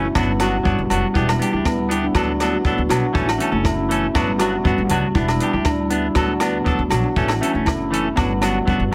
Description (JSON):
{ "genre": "highlife guitar band", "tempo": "120 BPM", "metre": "4/4", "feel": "straight", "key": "D major", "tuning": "A4 = 441 Hz", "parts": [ { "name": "semi-hollow electric guitar", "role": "accompaniment", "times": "0.0-8.9 s", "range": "E3 to A4", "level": "-26 LUFS", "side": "equal", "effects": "none" }, { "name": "handpan", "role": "arpeggios", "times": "0.0-8.7 s", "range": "G3 to F#4", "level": "-23 LUFS", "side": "equal", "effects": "tape echo" }, { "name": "upright bass", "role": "bass", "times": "0.0-8.9 s", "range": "E1 to D2", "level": "-27 LUFS", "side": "equal", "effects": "none" }, { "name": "compact cocktail drum kit", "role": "drums", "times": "0.2-8.8 s", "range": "hi-hat, kick drum, rim click", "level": "-26 LUFS", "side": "equal", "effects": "none" }, { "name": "agogo bells", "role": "percussion", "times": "0.2-8.5 s", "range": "none", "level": "-30 LUFS", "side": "equal", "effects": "none" } ], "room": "light reverb, studio reverb", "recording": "none", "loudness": "-19 LUFS", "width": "mono", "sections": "0.0-8.9 A section", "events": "none", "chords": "0.2 Gmaj7; 1.2 Em7; 2.2 D6; 3.2 A; 4.2 Gmaj7; 5.2 Em7; 6.2 D6; 7.2 A; 8.2 Gmaj7" }